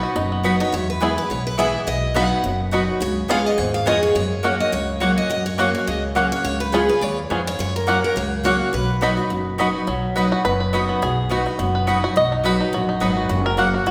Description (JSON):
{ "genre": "bluegrass", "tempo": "210 BPM", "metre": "4/4", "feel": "swing 56% on 8ths", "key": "B major", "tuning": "A4 = 440 Hz", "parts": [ { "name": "bluegrass banjo", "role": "melody", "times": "0.0-13.9 s", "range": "F#3 to D#5", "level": "-26 LUFS", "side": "equal", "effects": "none" }, { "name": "picked steel-string acoustic guitar", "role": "melody", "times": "0.0-9.6 s", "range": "A#4 to F#5", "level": "-27 LUFS", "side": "equal", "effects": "none" }, { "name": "picked steel-string acoustic guitar", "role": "accompaniment", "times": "0.0-13.9 s", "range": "E2 to G#4", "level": "-25 LUFS", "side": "equal", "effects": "none" }, { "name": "upright bass", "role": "bass", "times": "0.2-13.9 s", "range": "F#1 to F#2", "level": "-28 LUFS", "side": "equal", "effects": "none" }, { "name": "mandolin", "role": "stabs", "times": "0.4-13.7 s", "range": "A#3 to B5", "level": "-27 LUFS", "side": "equal", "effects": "none" } ], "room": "wet recital hall reverb, RT60 1.6 s", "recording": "recorded in a church or concert hall", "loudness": "-20 LUFS", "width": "mono", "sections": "0.7-9.9 A section; 9.9-13.9 B section", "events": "five-string banjo solo 9.9-13.9", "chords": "0.0 B; 0.7 E; 1.9 B; 3.0 C#7; 4.2 F#; 6.4 C#7; 7.6 F#; 8.7 B; 13.3 F#", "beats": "0.16 0.44 | 0.73 1.01 1.30 1.58 | 1.87 2.15 2.44 2.73 | 3.01 3.30 3.58 3.87 | 4.16 4.44 4.73 5.01 | 5.30 5.59 5.87 6.16 | 6.45 6.73 7.02 7.30 | 7.59 7.88 8.16 8.45 | 8.74 9.02 9.31 9.59 | 9.88 10.16 10.45 10.73 | 11.02 11.31 11.59 11.88 | 12.16 12.45 12.73 13.02 | 13.30 13.58 13.87" }